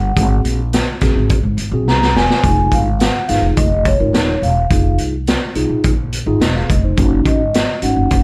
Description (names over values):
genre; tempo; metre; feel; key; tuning
uptempo 1960s-style soul; 106 BPM; 4/4; straight; unclear; A4 = 440 Hz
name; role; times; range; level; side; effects
vibraphone with soft mallets; melody; 0.0-8.2 s; Db5 to Bb5; -21 LUFS; equal; none
upright bass; bass; 0.0-8.2 s; Eb1 to Ab2; -20 LUFS; equal; none
mellow tine electric piano; accompaniment; 0.2-8.2 s; C4 to F5; -22 LUFS; equal; none
raw garage drum kit; drums; 0.2-8.2 s; hi-hat, kick drum, snare drum; -19 LUFS; equal; none
room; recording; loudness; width
light reverb; dark, warm production; -15 LUFS; mono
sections
0.0-8.2 A section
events
drum fill 1.9-2.4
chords
0.0 Ab7; 2.4 Fm7; 7.0 Ebm7